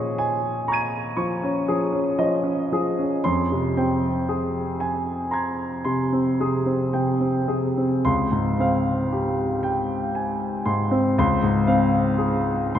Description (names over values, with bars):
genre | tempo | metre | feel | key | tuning
classical, impressionist solo piano | 36-41 BPM (dotted quarters) | 9/8 | rubato | unclear | A4 = 440 Hz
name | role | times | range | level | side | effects
clear concert grand piano | solo | 0.0-12.8 s | Db2 to Eb7 | -20 LUFS | equal | none
room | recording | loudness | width
wet cathedral reverb, RT60 5.4 s | in a vast, echoing space | -20 LUFS | side -10 dB against mid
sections
0.0-12.8 A section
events
none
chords
0.0 Bbm7; 3.2 Fmadd9; 8.0 Dbmaj7#11; 11.2 Dbmaj7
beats
0.17 1.66 | 3.22 4.79 6.37 | 8.03 9.61 11.16 | 12.72